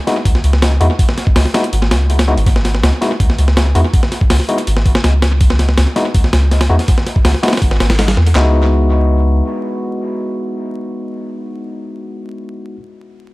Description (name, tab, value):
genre	drum and bass, jungle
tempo	163 BPM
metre	4/4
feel	straight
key	C# minor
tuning	A4 = 440 Hz
part	overdriven tine electric piano	stabs	0.1-12.8 s	G#3 to F#4	-20 LUFS	left 1 dB	dub echo
part	breakbeat sampler-style drum kit	drums	0.1-8.4 s	handclaps, hi-hat, kick drum, snare drum	-14 LUFS	equal	tape echo
part	soft dub sub bass	bass	0.3-9.4 s	G#1 to E2	-12 LUFS	equal	none
room	light reverb, digital ambience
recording	echo-heavy mix, vinyl crackle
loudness	-11 LUFS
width	side -20 dB against mid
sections	0.0-8.4 A section; 8.4-11.3 B section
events	drop 0.0-8.4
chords	0.0 C#m; 8.4 C#m11